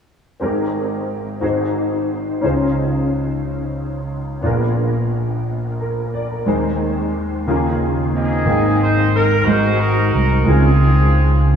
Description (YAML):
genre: gospel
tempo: 60 BPM (dotted quarters)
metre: 6/8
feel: straight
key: Ab major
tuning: A4 = 440 Hz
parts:
  - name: clear concert grand piano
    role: accompaniment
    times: 0.4-11.6 s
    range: Ab1 to G5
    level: -18 LUFS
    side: equal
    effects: ensemble chorus
  - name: warm horn section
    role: melody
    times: 8.1-11.5 s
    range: C4 to C5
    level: -18 LUFS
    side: right 2 dB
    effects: analog delay
  - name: fingered electric bass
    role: bass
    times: 8.5-11.6 s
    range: Ab1 to Db2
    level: -15 LUFS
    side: equal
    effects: none
room: wet lush hall reverb, RT60 2.7 s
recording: dreamy mix soaked in reverb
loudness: -16 LUFS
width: side -7 dB against mid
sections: 0.4-8.5 A section; 8.5-11.6 B section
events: none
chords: 0.4 Abmaj9; 1.4 Ab7; 2.4 Dbmaj9; 4.4 Bb7b9; 6.5 Ab/Eb; 7.5 Eb9sus4; 8.5 Abmaj9; 9.5 Ab7; 10.5 Dbmaj9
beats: | 0.42 1.42 | 2.43 3.44 | 4.44 5.45 | 6.45 7.46 | 8.46 9.46 | 10.46 11.46